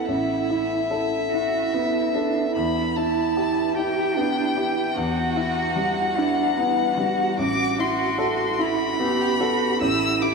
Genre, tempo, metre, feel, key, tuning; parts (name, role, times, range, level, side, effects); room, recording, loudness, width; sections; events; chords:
neoclassical piano and strings; 49 BPM (dotted quarters); 6/8; rubato; A4 = 440 Hz
rich violin; melody; 0.0-10.3 s; E5 to E6; -25 LUFS; left 3 dB
warm cello; second line; 0.0-10.3 s; D4 to G4; -25 LUFS; right 6 dB
warm grand piano; accompaniment; 0.0-10.3 s; A1 to A4; -25 LUFS; left 2 dB
wet huge ambient reverb, RT60 7.8 s; in a vast, echoing space, small room ambience; -20 LUFS; side -4 dB against mid
0.0-10.3 A section
0.0 Asus2; 2.6 Emadd9; 7.4 Asus2